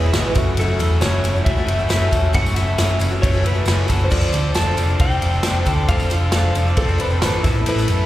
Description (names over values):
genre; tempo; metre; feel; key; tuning
folk rock and heartland rock; 135 BPM; 4/4; straight; unclear; A4 = 438 Hz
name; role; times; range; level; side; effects
clean lap steel guitar; melody; 0.0-8.1 s; A4 to A5; -25 LUFS; left 1 dB; slapback echo
barky reed electric piano; accompaniment; 0.0-8.1 s; E4 to E5; -33 LUFS; equal; none
picked twelve-string acoustic guitar; accompaniment; 0.0-8.1 s; E2 to A4; -26 LUFS; left 3 dB; slapback echo
accordion; sustained chords; 0.0-8.1 s; G#4 to E6; -33 LUFS; right 4 dB; none
crunchy overdriven guitar; riff; 0.0-8.1 s; F#2 to A4; -26 LUFS; right 1 dB; spring reverb, slapback echo
hollow-body short-scale picked electric bass; bass; 0.0-8.1 s; E1 to F#2; -19 LUFS; equal; none
natural country drum kit; drums; 0.1-8.0 s; crash cymbal, kick drum, ride cymbal, snare drum; -22 LUFS; equal; none
tambourine; percussion; 0.1-8.0 s; none; -36 LUFS; right 3 dB; none
clear upright piano; second line; 6.8-7.6 s; A4 to B4; -26 LUFS; equal; slapback echo
room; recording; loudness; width
small room ambience; live gig heard through the venue's PA, recital hall reverb; -16 LUFS; side -14 dB against mid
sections
0.0-8.1 A section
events
none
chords
0.4 F#m7; 4.1 F6; 7.4 Asus2